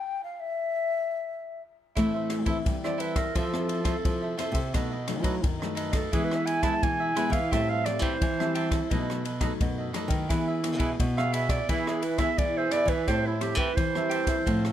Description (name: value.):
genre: samba and choro.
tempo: 86 BPM.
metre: 4/4.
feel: straight.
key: A minor.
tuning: A4 = 439 Hz.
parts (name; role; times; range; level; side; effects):
breathy mellow wooden flute; melody; 0.0-1.6 s; E5 to G5; -29 LUFS; left 5 dB; none.
cavaquinho; accompaniment; 2.0-14.7 s; D#4 to A5; -34 LUFS; right 3 dB; none.
nylon-string guitar; accompaniment; 2.0-14.7 s; F#2 to A4; -34 LUFS; left 5 dB; none.
nylon-string guitar; bass; 2.0-14.7 s; A2 to A3; -30 LUFS; right 1 dB; none.
open jazz drum kit; drums; 2.0-14.7 s; kick drum, ride cymbal, rim click; -30 LUFS; equal; none.
warm clarinet; second line; 2.9-14.7 s; E4 to A5; -30 LUFS; right 3 dB; none.
room: light reverb.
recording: close, detailed microphones.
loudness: -25 LUFS.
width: side -11 dB against mid.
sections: 0.0-2.0 A section; 2.0-14.7 B section.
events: stop 0.0-2.0; clarinet solo 2.0-14.7.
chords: 0.0 N.C.; 2.0 Am; 3.4 Fmaj7; 4.7 B7; 6.1 E; 7.5 Am7; 8.9 B7; 10.3 E; 13.1 Am7.